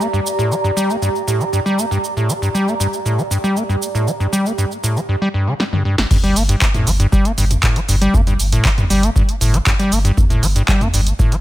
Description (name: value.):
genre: acid house.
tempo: 118 BPM.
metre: 4/4.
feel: straight.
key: G minor.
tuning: A4 = 439 Hz.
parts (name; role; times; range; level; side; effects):
acid bass, square; riff; 0.0-11.4 s; G1 to Bb3; -18 LUFS; equal; overdrive, cassette tape, tape echo.
punchy analog drum machine; drums; 0.0-11.4 s; crash cymbal, handclaps, hi-hat, shaker, snare drum, toms; -21 LUFS; equal; none.
warbly tape-like pad; texture; 0.0-5.1 s; G4 to Bb5; -22 LUFS; right 3 dB; chorus, built-in reverb, phaser, sidechain pumping.
electronic kick drum; drums; 6.1-11.3 s; none; -16 LUFS; equal; none.
warm sub bass; bass; 6.2-11.1 s; G1; -17 LUFS; equal; tube saturation, sidechain pumping.
room: light reverb, digital ambience.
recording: none.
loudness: -14 LUFS.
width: side -14 dB against mid.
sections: 0.0-6.1 A section; 6.1-11.4 B section.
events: drum fill 5.6-6.1; drop 6.1-11.4.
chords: 0.0 Gm; 6.1 N.C..